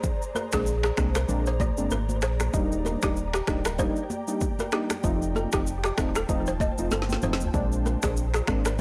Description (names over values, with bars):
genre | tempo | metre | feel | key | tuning
afrobeats | 96 BPM | 4/4 | swing 58% on 16ths | Eb major | A4 = 440 Hz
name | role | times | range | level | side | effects
ethereal airy pad | sustained chords | 0.0-8.8 s | F4 to Bb5 | -38 LUFS | equal | ensemble chorus, built-in reverb
afro-pop drum kit | drums | 0.0-8.8 s | finger snaps, kick drum, rim click, shaker, snare drum, toms | -31 LUFS | equal | none
congas | percussion | 0.1-8.0 s | none | -39 LUFS | equal | none
balafon | riff | 0.4-8.7 s | G4 to Eb5 | -34 LUFS | equal | analog delay
warm analog keys | accompaniment | 0.5-8.7 s | F3 to Eb4 | -33 LUFS | equal | chorus
sub bass with octave | bass | 0.5-8.8 s | D1 to C2 | -31 LUFS | equal | none
room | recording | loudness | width
little or no reverb | dry, gritty hardware recording | -26 LUFS | mono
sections
0.0-8.8 A section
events
drum fill 6.9-7.5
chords
0.0 Bb9; 2.5 Ebmaj7; 5.0 F7; 7.5 Bb9